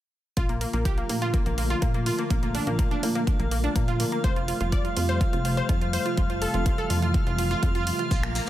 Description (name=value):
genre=progressive house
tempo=124 BPM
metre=4/4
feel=straight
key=F major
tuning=A4 = 438 Hz
part: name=airy breathy pad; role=sustained chords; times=0.4-8.5 s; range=C3 to F4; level=-32 LUFS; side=equal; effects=chorus, sidechain pumping
part: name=analog pluck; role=arpeggios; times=0.4-8.4 s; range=Bb3 to D5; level=-29 LUFS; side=right 1 dB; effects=chorus, sidechain pumping, tape echo
part: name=plucky analog bass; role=bass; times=0.4-8.4 s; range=F1 to Bb2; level=-28 LUFS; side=equal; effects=sidechain pumping
part: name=electronic kick drum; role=drums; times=0.4-8.2 s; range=none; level=-25 LUFS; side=equal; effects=studio reverb
part: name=pop drum kit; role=drums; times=0.4-8.5 s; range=finger snaps, hi-hat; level=-35 LUFS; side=right 2 dB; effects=studio reverb
part: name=drifting glass-harmonics texture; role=texture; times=1.0-8.5 s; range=F5 to F6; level=-35 LUFS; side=left 2 dB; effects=chorus, built-in reverb, sidechain pumping
part: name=maracas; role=percussion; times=8.1-8.5 s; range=none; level=-34 LUFS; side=left 3 dB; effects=none
room=little or no reverb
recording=none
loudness=-23 LUFS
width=side -13 dB against mid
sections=0.4-8.5 A section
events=filter sweep on analog synth pad 0.4-8.5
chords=0.4 Bbmaj7; 4.2 Fadd9